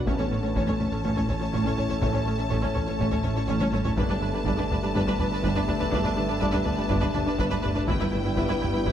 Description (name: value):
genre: cinematic, hybrid orchestral and electronic film score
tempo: 123 BPM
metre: 4/4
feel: straight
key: unclear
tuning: A4 = 440 Hz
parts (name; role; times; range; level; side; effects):
- rich studio violin section; melody; 0.0-8.9 s; G5 to A5; -35 LUFS; left 2 dB; none
- clear trombone section; sustained chords; 0.0-8.9 s; G2 to B3; -35 LUFS; right 2 dB; none
- dark French horn section; sustained chords; 0.0-8.9 s; B3 to E4; -35 LUFS; left 5 dB; none
- glassy FM pad; sustained chords; 0.0-8.9 s; A3 to C#5; -36 LUFS; left 4 dB; none
- dark detuned saw bass; bass; 0.0-8.9 s; G1 to A1; -33 LUFS; equal; none
- warm symphonic violin section; second line; 0.1-8.9 s; B4 to C#5; -35 LUFS; left 1 dB; none
- warm symphonic viola section; accompaniment; 0.1-8.9 s; C#4 to E4; -33 LUFS; right 2 dB; none
- soft round pluck; arpeggios; 0.1-8.9 s; E3 to A4; -36 LUFS; left 3 dB; none
- rich symphonic cello section; bass; 0.1-8.9 s; G2 to A2; -31 LUFS; right 2 dB; none
- rich symphonic double bass section; bass; 0.1-8.9 s; G1 to A1; -32 LUFS; right 2 dB; none
- taiko ensemble; drums; 0.1-8.9 s; none; -31 LUFS; equal; none
room: moderate scoring stage reverb, RT60 2.0 s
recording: none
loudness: -23 LUFS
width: side -10 dB against mid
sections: 0.0-8.9 A section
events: drum fill 3.5-4.0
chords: 0.1 A; 4.0 Gadd9; 7.9 Em/G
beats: | 0.08 0.56 1.05 1.54 | 2.03 2.52 3.00 3.49 | 3.98 4.47 4.95 5.44 | 5.93 6.42 6.91 7.39 | 7.88 8.37 8.86